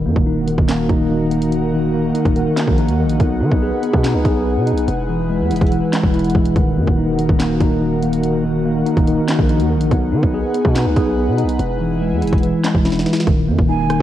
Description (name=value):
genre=hip hop, drill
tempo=143 BPM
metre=4/4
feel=half-time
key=Eb phrygian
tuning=A4 = 439 Hz
part: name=airy breathy pad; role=sustained chords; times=0.0-13.3 s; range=Eb4 to Gb5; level=-24 LUFS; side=left 1 dB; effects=chorus, cassette tape
part: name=mellow tine electric piano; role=arpeggios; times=0.0-14.0 s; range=Eb3 to G#4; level=-18 LUFS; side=equal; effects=medium stereo tremolo, low-pass filter, cassette tape, tape echo
part: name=distorted 808-style bass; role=bass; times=0.0-14.0 s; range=Eb1 to D#3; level=-21 LUFS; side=equal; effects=distortion
part: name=drill drum kit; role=drums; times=0.2-14.0 s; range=handclaps, hi-hat, kick drum, rim click, snare drum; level=-18 LUFS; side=equal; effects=cassette tape
part: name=breathy jazz flute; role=second line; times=13.7-14.0 s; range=Ab5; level=-20 LUFS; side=right 11 dB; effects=cassette tape
room=light reverb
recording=home recording on cassette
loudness=-14 LUFS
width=side -12 dB against mid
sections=0.0-13.3 A section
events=drum fill 12.9-13.3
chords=0.0 Ebm; 3.2 B6; 4.9 Eadd9; 6.6 Ebm; 9.9 B6; 11.6 Eadd9; 13.3 Ebm